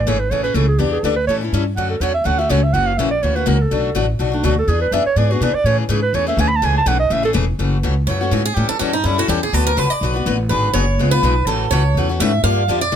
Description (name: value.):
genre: acoustic string swing (jazz manouche).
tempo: 247 BPM.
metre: 4/4.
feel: swing 55% on 8ths.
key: A major.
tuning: A4 = 445 Hz.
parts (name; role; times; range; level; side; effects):
mellow clarinet; melody; 0.0-7.3 s; D4 to B5; -19 LUFS; right 4 dB; none.
upright bass; bass; 0.0-13.0 s; E1 to B2; -18 LUFS; equal; none.
picked steel-string acoustic guitar; accompaniment; 0.1-13.0 s; B2 to B4; -21 LUFS; left 7 dB; none.
picked swing-style acoustic guitar; second line; 8.1-13.0 s; D#4 to F5; -19 LUFS; right 3 dB; none.
room: light reverb.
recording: close, detailed microphones.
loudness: -15 LUFS.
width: side -9 dB against mid.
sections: 0.0-7.6 A section; 7.6-13.0 A section.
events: clarinet solo 0.0-7.6; steel-string acoustic guitar solo 7.6-13.0.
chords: 0.0 Amaj7; 0.8 Em7; 1.3 A7; 1.8 Dmaj9; 2.7 F#7; 3.7 Bm7; 4.7 E7; 5.6 Amaj7; 7.6 F#m9; 8.6 A7; 9.5 D6; 10.5 G#m7b5; 11.0 C#7; 11.5 F#m7; 12.4 Gm7.